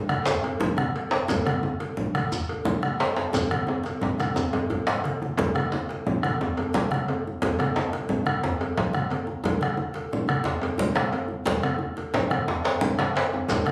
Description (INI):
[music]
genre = west african traditional, West African drum ensemble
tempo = 118 BPM (dotted quarters)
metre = 12/8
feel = straight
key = none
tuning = none
[part]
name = bombo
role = percussion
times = 0.1-13.7 s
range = none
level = -34 LUFS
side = equal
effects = none
[part]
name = congas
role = percussion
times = 0.1-13.7 s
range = none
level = -30 LUFS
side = equal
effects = none
[part]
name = cowbell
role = percussion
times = 0.1-13.7 s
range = none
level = -35 LUFS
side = equal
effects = none
[part]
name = djembe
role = percussion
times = 0.1-13.6 s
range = none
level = -37 LUFS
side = equal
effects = none
[part]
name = djembe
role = percussion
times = 0.3-13.7 s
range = none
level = -30 LUFS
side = equal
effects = none
[part]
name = shekere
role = percussion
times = 0.3-5.0, 13.5-13.6 s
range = none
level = -38 LUFS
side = equal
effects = none
[sound]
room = wet studio reverb, RT60 0.5 s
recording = recorded on a phone in the room, club reverb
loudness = -26 LUFS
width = mono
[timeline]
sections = 0.0-5.4 A section; 5.4-13.7 B section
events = drum fill 3.3-5.4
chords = none